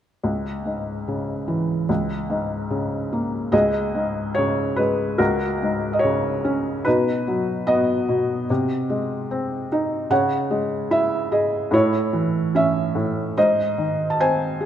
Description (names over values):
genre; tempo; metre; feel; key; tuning
classical, lyrical solo piano; 73 BPM; 4/4; rubato; C# minor; A4 = 440 Hz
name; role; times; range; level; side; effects
felt-muted upright piano; solo; 0.2-14.7 s; C#2 to A5; -20 LUFS; equal; none
room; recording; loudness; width
moderate concert hall reverb, RT60 1.8 s; minimal, uncompressed stereo recording; -20 LUFS; side -10 dB against mid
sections
0.2-3.5 A section; 3.5-14.7 B section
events
none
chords
0.2 C#m; 1.9 C#5; 3.5 C#sus2; 5.2 F#add9/C#; 6.9 B; 8.5 G#/B#; 10.1 C#m; 11.7 A; 13.4 G#